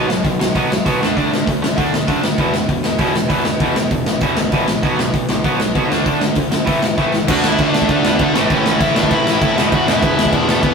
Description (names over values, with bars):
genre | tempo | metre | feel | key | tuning
punk rock | 196 BPM | 4/4 | straight | unclear | A4 = 440 Hz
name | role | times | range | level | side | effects
raw garage guitar | riff | 0.0-10.7 s | E2 to D4 | -19 LUFS | right 4 dB | overdrive
tight distorted guitar | riff | 0.0-10.7 s | E2 to D4 | -22 LUFS | left 6 dB | distortion
growling picked electric bass | bass | 0.0-10.7 s | E1 to D3 | -27 LUFS | equal | overdrive
big rock drum kit | drums | 0.1-10.7 s | crash cymbal, hi-hat, kick drum, snare drum | -17 LUFS | left 1 dB | none
high-gain lead guitar | melody | 7.3-10.7 s | A3 to F#5 | -20 LUFS | left 2 dB | distortion
distorted electric guitar | riff | 7.3-10.7 s | A2 to F#4 | -22 LUFS | equal | overdrive
room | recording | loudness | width
moderate stone room reverb, RT60 1.2 s | rough rehearsal-room recording | -14 LUFS | side -5 dB against mid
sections
0.0-7.3 A section; 7.3-10.7 B section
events
drum fill 7.0-7.3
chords
0.0 B5; 1.0 D; 2.4 E5; 4.8 B5; 5.9 D; 6.7 A5; 7.3 D; 8.3 A; 9.6 E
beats
0.24 0.55 0.85 | 1.16 1.47 1.77 2.08 | 2.39 2.69 3.00 3.31 | 3.61 3.92 4.23 4.53 | 4.84 5.14 5.45 5.76 | 6.06 6.37 6.67 6.98 | 7.28 7.59 7.89 8.20 | 8.50 8.81 9.11 9.41 | 9.72 10.02 10.32 10.63